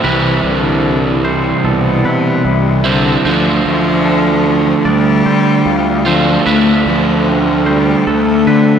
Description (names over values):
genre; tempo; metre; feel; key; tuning
rock; 75 BPM; 4/4; straight; unclear; A4 = 438 Hz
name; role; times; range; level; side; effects
rich cello; melody; 0.0-8.8 s; B2 to A3; -15 LUFS; left 4 dB; slapback echo, analog delay
electric guitar through a small old amp; arpeggios; 0.0-8.8 s; C3 to F4; -22 LUFS; left 5 dB; slapback echo, analog delay
twangy electric guitar; arpeggios; 0.0-8.8 s; A4 to D5; -23 LUFS; right 1 dB; tremolo, slapback echo, analog delay
overdriven electric guitar; riff; 0.0-8.8 s; C3 to F4; -14 LUFS; right 6 dB; slapback echo
fuzz fingered electric bass; bass; 0.0-8.8 s; C2 to D3; -17 LUFS; left 1 dB; overdrive
room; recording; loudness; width
moderate lush hall reverb, RT60 2.3 s; big arena sound; -10 LUFS; side -8 dB against mid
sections
0.0-8.8 A section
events
none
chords
0.0 Cmaj7; 3.2 Dm7